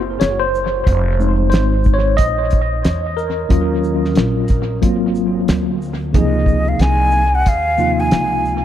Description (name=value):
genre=hip hop, jazz-hop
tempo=91 BPM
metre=4/4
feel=swing 62% on 16ths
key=Db major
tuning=A4 = 439 Hz
part: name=upright bass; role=bass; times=0.0-8.6 s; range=F1 to Fb2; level=-19 LUFS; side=equal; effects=none
part: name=tine electric piano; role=accompaniment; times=0.2-8.6 s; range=C3 to Eb5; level=-18 LUFS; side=left 1 dB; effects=medium stereo tremolo, dub echo
part: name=cloth-damped thuddy drum kit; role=drums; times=0.2-8.6 s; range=hi-hat, kick drum, shaker, snare drum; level=-18 LUFS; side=equal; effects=dub echo
part: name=breathy mellow silver concert flute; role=melody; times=6.2-8.6 s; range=Eb5 to Ab5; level=-17 LUFS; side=equal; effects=dub echo
room=light reverb, studio ambience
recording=echo-heavy mix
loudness=-14 LUFS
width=side -11 dB against mid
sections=0.0-6.1 A section; 6.1-8.6 B section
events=tine electric piano solo 0.0-6.1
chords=0.0 Gb5; 0.9 Fm7; 3.5 Ebm7; 4.8 Ab13; 6.1 Dbmaj9